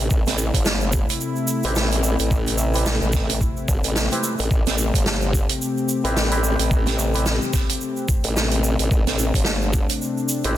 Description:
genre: glitch hop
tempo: 109 BPM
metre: 4/4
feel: swing 57% on 16ths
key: A minor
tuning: A4 = 441 Hz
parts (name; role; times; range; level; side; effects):
- warm analog pad; sustained chords; 0.0-10.6 s; C3 to G4; -26 LUFS; left 2 dB; chorus, sidechain pumping
- formant-sweep wobble bass; bass; 0.0-10.6 s; G1 to A1; -22 LUFS; equal; chorus
- electronic kick drum; drums; 0.1-9.9 s; none; -21 LUFS; equal; none
- egg shaker; percussion; 0.1-10.5 s; none; -31 LUFS; right 3 dB; none
- vintage drum kit; drums; 0.3-10.5 s; hi-hat, snare drum; -25 LUFS; right 2 dB; none
- clav; stabs; 1.6-10.6 s; C4 to B4; -29 LUFS; right 1 dB; auto-wah, sidechain pumping, tape echo
room: light reverb, small room ambience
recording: dense, heavily limited modern master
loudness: -18 LUFS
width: side -12 dB against mid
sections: 0.0-10.6 A section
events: none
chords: 0.0 Am9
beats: | 0.11 0.66 1.21 1.76 | 2.31 2.86 3.41 3.96 | 4.51 5.06 5.61 6.16 | 6.71 7.26 7.81 8.36 | 8.91 9.46 10.01 10.56

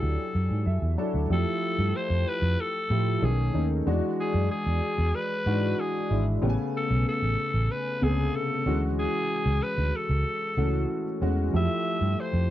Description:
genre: polished 1980s jazz-funk pop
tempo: 94 BPM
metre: 4/4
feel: straight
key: unclear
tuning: A4 = 440 Hz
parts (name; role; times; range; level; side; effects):
- growling alto saxophone; melody; 0.0-12.5 s; G#4 to E5; -30 LUFS; left 1 dB; slapback echo
- warm grand piano; accompaniment; 0.0-12.5 s; C3 to A5; -29 LUFS; left 1 dB; analog chorus
- vintage muted fingered electric bass; bass; 0.0-12.5 s; G#1 to A2; -25 LUFS; equal; none
room: little or no reverb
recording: dry, close 1970s-style studio recording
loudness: -24 LUFS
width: side -13 dB against mid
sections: 0.0-1.3 A section; 1.3-12.5 B section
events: grand piano fill 0.3-1.3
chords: 0.0 E9sus4; 1.3 Fmaj9; 3.2 B13; 3.9 E9; 6.4 Amaj9; 8.7 Dmaj9#11; 11.5 Fmaj9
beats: 0.03 0.67 | 1.31 1.95 2.59 3.23 | 3.87 4.50 5.14 5.78 | 6.42 7.06 7.70 8.34 | 8.98 9.62 10.26 10.90 | 11.54 12.18

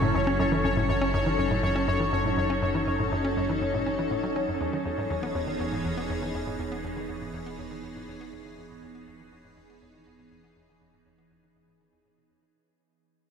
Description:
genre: ambient, sequencer-driven space music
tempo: 121 BPM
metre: 4/4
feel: straight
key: unclear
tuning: A4 = 440 Hz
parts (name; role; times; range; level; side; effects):
- evolving wavetable pad; sustained chords; 0.0-12.5 s; E3 to A4; -31 LUFS; equal; ensemble chorus, built-in reverb, phaser, shimmer reverb
- hollow square pluck; riff; 0.0-12.5 s; E2 to C#4; -30 LUFS; left 1 dB; chorus, analog delay
- fat analog bass; bass; 0.0-12.5 s; E1 to F#1; -34 LUFS; left 1 dB; none
- pulsing gated texture; texture; 0.0-12.6 s; C#4 to C#5; -31 LUFS; left 1 dB; chorus, built-in reverb, shimmer reverb
room: wet huge ambient reverb, RT60 8.2 s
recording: none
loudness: -25 LUFS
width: side -7 dB against mid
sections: 0.0-12.5 A section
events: fade-out on synth arpeggio sound 0.0-12.5; fade-out on analog synth bass 0.0-12.5; fade-out 0.0-12.5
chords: 0.0 F#m7; 4.6 Emaj7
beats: 0.15 | 0.64 1.14 1.64 2.13 | 2.63 3.12 3.62 4.12 | 4.61 5.11 5.60 6.10 | 6.59 7.09 7.59 8.08 | 8.58 9.07 9.57 10.06 | 10.56 11.06 11.55 12.05

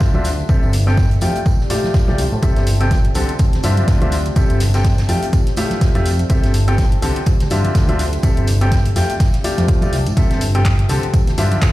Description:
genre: piano house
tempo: 124 BPM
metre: 4/4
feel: swing 57% on 16ths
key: C major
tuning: A4 = 440 Hz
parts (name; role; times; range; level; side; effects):
- clear baby grand piano; riff; 0.0-11.7 s; C3 to A5; -22 LUFS; left 1 dB; sidechain pumping, low-pass filter, ping-pong delay
- fat analog bass; bass; 0.0-11.7 s; G1 to A2; -17 LUFS; equal; sidechain pumping
- electronic kick drum; drums; 0.0-11.7 s; none; -16 LUFS; equal; overdrive
- soft-mallet drum kit; drums; 0.0-11.7 s; hi-hat, snare drum, tambourine; -35 LUFS; right 2 dB; high-pass filter on hats, high-pass filter on snare, high-pass filter on perc, high-pass filter on room
- tambourine and congas; percussion; 0.0-11.7 s; none; -30 LUFS; right 2 dB; none
- deep dark ambient pad; texture; 0.0-11.7 s; C4 to C5; -28 LUFS; left 1 dB; chorus, built-in reverb, sidechain pumping
- punchy analog drum machine; drums; 0.2-11.7 s; handclaps, hi-hat; -28 LUFS; left 1 dB; overdrive
room: small room reverb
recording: played on a big sound system in a bare room, large studio reverb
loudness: -14 LUFS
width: side -16 dB against mid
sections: 0.0-11.7 A section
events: none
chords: 0.5 C6; 1.2 Fmaj9; 2.4 C6; 3.4 Dm9; 4.4 C6; 5.1 Fmaj9; 6.3 C6; 7.3 Dm9; 8.2 C6; 9.0 Fmaj9; 10.2 C6; 11.1 Dm9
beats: 0.01 | 0.49 0.97 1.46 1.94 | 2.43 2.91 3.39 3.88 | 4.36 4.85 5.33 5.81 | 6.30 6.78 7.26 7.75 | 8.23 8.72 9.20 9.68 | 10.17 10.65 11.14 11.62

